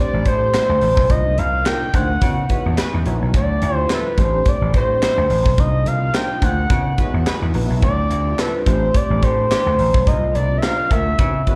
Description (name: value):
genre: early-eighties boogie funk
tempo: 107 BPM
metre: 4/4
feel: swing 56% on 16ths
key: unclear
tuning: A4 = 436 Hz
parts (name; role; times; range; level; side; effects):
- expressive portamento lead; melody; 0.0-11.6 s; B4 to G5; -23 LUFS; equal; chorus, slapback echo, tape echo
- tine electric piano; accompaniment; 0.0-11.6 s; G3 to C#5; -31 LUFS; equal; ensemble chorus, slapback echo
- string machine, full ensemble; sustained chords; 0.0-11.6 s; C3 to G4; -33 LUFS; equal; none
- vintage slap bass; bass; 0.1-11.4 s; A1 to C#3; -22 LUFS; equal; none
- warm horn section; second line; 0.3-11.6 s; E3 to C5; -32 LUFS; equal; slapback echo
- tight funk drum kit; drums; 0.3-11.6 s; handclaps, hi-hat, kick drum, snare drum; -22 LUFS; equal; none
room: small room ambience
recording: live gig heard through the venue's PA, club reverb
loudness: -18 LUFS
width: mono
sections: 0.0-11.6 A section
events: none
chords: 0.0 Am11; 1.1 Cm11; 2.2 C#m11; 3.3 Dm11; 4.2 Am11; 5.6 Cm11; 6.7 C#m11; 7.8 Dm11; 8.7 Am11; 10.1 Cm11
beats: 0.54 | 1.10 1.66 2.22 2.78 | 3.34 3.90 4.46 5.02 | 5.58 6.14 6.71 7.27 | 7.83 8.39 8.95 9.51 | 10.07 10.63 11.19